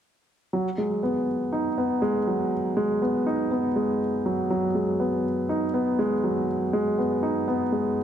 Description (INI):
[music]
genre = electronica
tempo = 121 BPM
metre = 4/4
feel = straight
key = G# minor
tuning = A4 = 442 Hz
[part]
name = dark grand piano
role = riff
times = 0.5-8.0 s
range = F#3 to D#4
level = -23 LUFS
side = equal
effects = tape echo
[sound]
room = moderate echo chamber reverb, RT60 2.3 s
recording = none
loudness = -23 LUFS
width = side -9 dB against mid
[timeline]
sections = 0.5-8.0 A section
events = none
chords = none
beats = | 0.54 1.03 1.53 2.02 | 2.52 3.01 3.51 4.01 | 4.50 5.00 5.49 5.99 | 6.49 6.98 7.48 7.97